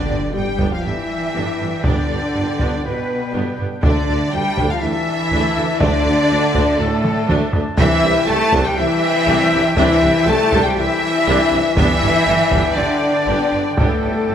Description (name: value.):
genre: cinematic, epic orchestral film score.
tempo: 121 BPM.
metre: 4/4.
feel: straight.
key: G major.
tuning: A4 = 441 Hz.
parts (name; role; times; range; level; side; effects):
rich symphonic violin section; melody; 0.0-14.3 s; A4 to A5; -26 LUFS; left 2 dB; none.
bright flute section; second line; 0.0-14.3 s; A4 to A5; -25 LUFS; equal; none.
dark symphonic violin section; second line; 0.0-14.3 s; A4 to A5; -25 LUFS; left 3 dB; none.
rich symphonic viola section; accompaniment; 0.0-14.3 s; F3 to D4; -27 LUFS; right 1 dB; none.
mellow French horn section; sustained chords; 0.0-14.3 s; A3 to A4; -21 LUFS; left 4 dB; none.
warm trombone section; sustained chords; 0.0-14.3 s; A2 to A3; -27 LUFS; right 4 dB; none.
warm woodwind section; sustained chords; 0.0-14.3 s; A3 to A5; -28 LUFS; right 1 dB; none.
rich studio cello section; bass; 0.0-14.3 s; A2 to A3; -24 LUFS; right 2 dB; none.
impact and reverse cymbal; sound effects; 0.0-1.8, 13.8-14.3 s; none; -30 LUFS; equal; none.
rich symphonic double bass section; bass; 0.1-14.3 s; G1 to G2; -26 LUFS; right 3 dB; none.
warm tuba; bass; 0.1-14.3 s; G1 to D2; -26 LUFS; right 3 dB; none.
solo taiko drums; drums; 0.6-14.2 s; none; -21 LUFS; equal; none.
room: moderate scoring stage reverb, RT60 2.0 s.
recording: none.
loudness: -14 LUFS.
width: side -9 dB against mid.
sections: 0.0-14.3 A section.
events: impact 0.0-1.8; drum fill 7.0-7.8.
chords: 0.0 G; 3.8 Dm; 7.8 Cadd9; 11.8 Gadd9.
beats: 0.34 0.84 1.34 | 1.84 2.34 2.84 3.34 | 3.83 4.33 4.82 5.32 | 5.81 6.31 6.80 7.29 | 7.79 8.28 8.78 9.28 | 9.77 10.27 10.77 11.27 | 11.77 12.26 12.77 13.27 | 13.78 14.29.